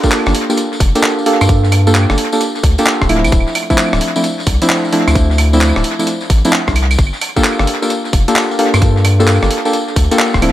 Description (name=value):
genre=UK garage, two-step garage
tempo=131 BPM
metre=4/4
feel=swing 66% on 16ths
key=G minor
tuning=A4 = 439 Hz
part: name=deep mellow chord stab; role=stabs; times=0.0-10.5 s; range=F3 to A4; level=-15 LUFS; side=equal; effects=chorus, tape echo
part: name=electronic kick drum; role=drums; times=0.0-10.4 s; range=none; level=-14 LUFS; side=equal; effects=none
part: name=tambourine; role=percussion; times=0.0-10.4 s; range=none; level=-26 LUFS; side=left 3 dB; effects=tape echo
part: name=breakbeat sampler-style drum kit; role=drums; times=0.1-10.5 s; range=claves, handclaps, hi-hat, rim click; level=-18 LUFS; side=equal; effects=tape echo
part: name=saturated sub bass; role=bass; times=0.3-10.5 s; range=D1 to G2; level=-13 LUFS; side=equal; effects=none
room=light reverb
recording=echo-heavy mix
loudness=-11 LUFS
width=side -13 dB against mid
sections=0.0-10.5 A section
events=none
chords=0.0 Gm9; 3.1 Dm9; 7.0 Gm9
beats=0.12 0.57 1.03 | 1.49 1.95 2.41 2.87 | 3.32 3.78 4.24 4.70 | 5.16 5.61 6.07 6.53 | 6.99 7.45 7.90 8.36 | 8.82 9.28 9.73 10.19